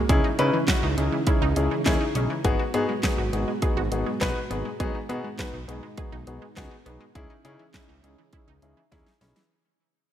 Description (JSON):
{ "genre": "synth-pop", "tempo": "102 BPM", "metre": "4/4", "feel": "straight", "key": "C# minor", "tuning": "A4 = 441 Hz", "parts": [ { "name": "string machine, cellos", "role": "sustained chords", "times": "0.0-9.5 s", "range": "C#3 to G#4", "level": "-32 LUFS", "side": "right 1 dB", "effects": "ensemble chorus" }, { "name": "wide unison pluck", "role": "arpeggios", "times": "0.0-9.5 s", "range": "E3 to G#4", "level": "-34 LUFS", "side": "moving between left 2 dB and right 8 dB", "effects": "auto-pan, tape echo" }, { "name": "dark baby grand piano", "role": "accompaniment", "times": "0.1-9.5 s", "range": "B3 to B5", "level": "-28 LUFS", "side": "left 3 dB", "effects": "none" }, { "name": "fat analog bass", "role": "bass", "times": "0.1-9.3 s", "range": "G#1 to C#3", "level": "-28 LUFS", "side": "right 1 dB", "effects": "none" }, { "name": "pop drum kit", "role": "drums", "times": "0.1-9.5 s", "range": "handclaps, hi-hat, kick drum, snare drum", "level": "-26 LUFS", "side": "equal", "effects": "gated reverb" } ], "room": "light reverb, digital ambience", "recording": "none", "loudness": "-22 LUFS", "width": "side -10 dB against mid", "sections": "0.0-9.5 A section", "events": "fade-out 0.0-9.5; grand piano fill 8.3-9.5; drum fill 8.9-9.5", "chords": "0.1 C#madd9; 2.4 G#m7; 4.8 B6; 7.2 C#madd9", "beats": "| 0.09 0.68 1.27 1.86 | 2.45 3.04 3.62 4.21 | 4.80 5.39 5.98 6.57 | 7.15 7.74 8.33 8.92" }